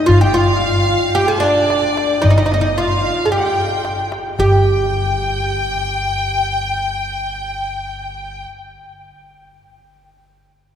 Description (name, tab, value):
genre	Arabic maqam ensemble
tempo	112 BPM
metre	4/4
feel	straight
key	G maqam saba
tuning	A4 = 440 Hz
part	oud	melody	0.0-8.4 s	D4 to Ab4+50c	-17 LUFS	right 1 dB	none
part	rich symphonic violin section	second line	0.0-8.4 s	D5 to Ab5+50c	-20 LUFS	left 1 dB	none
part	upright bass	bass	0.1-8.4 s	G1	-21 LUFS	left 1 dB	none
part	darbuka	percussion	0.1-4.6 s	none	-22 LUFS	left 1 dB	none
room	wet cathedral reverb, RT60 4.5 s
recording	recorded in a church or concert hall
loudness	-14 LUFS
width	side -9 dB against mid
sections	0.0-4.4 A section; 4.4-8.7 B section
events	none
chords	none